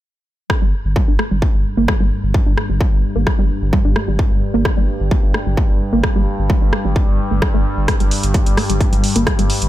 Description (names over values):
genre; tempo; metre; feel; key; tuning
driving peak-time techno; 130 BPM; 4/4; straight; G minor; A4 = 442 Hz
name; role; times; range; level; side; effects
tight sequenced synth; riff; 0.5-9.4 s; G3 to D4; -22 LUFS; right 1 dB; chorus, tube saturation, sidechain pumping, ping-pong delay
analog drone; drone; 1.3-9.7 s; G2; -24 LUFS; left 1 dB; chorus, sidechain pumping
electronic kick drum; drums; 0.5-9.4 s; none; -16 LUFS; equal; distortion, overdrive, studio ambience
punchy analog drum machine; drums; 0.5-9.7 s; hi-hat, rim click; -25 LUFS; equal; studio ambience
saturated sub bass; bass; 0.6-9.7 s; G1; -20 LUFS; equal; sidechain pumping, low-pass filter
room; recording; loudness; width
digital ambience; none; -14 LUFS; side -14 dB against mid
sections
0.5-9.7 A section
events
none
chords
0.5 G5